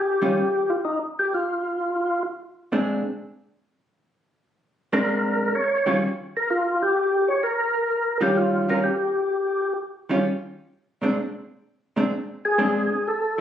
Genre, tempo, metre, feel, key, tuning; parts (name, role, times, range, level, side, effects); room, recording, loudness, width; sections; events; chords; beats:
jazz; 128 BPM; 4/4; swing 68% on 8ths; A4 = 440 Hz
percussive tonewheel organ; melody; 0.0-13.4 s; Eb4 to Db5; -22 LUFS; left 1 dB; slow rotary speaker, overdrive, chorus vibrato
vintage hollow-body jazz guitar; accompaniment; 0.2-13.4 s; Bb2 to F4; -23 LUFS; right 1 dB
wet club reverb, RT60 0.6 s; recorded on a phone in the room, studio reverb, compression, lossy compression artefacts; -21 LUFS; side -10 dB against mid
0.0-13.4 A section
0.0 Eb9; 1.8 Bb9; 5.5 Eb9; 11.2 Bb9
0.37 0.84 1.31 | 1.78 2.25 2.72 3.19 | 3.66 4.13 4.60 5.07 | 5.54 6.01 6.48 6.95 | 7.42 7.89 8.36 8.83 | 9.30 9.77 10.24 10.71 | 11.18 11.65 12.12 12.59 | 13.06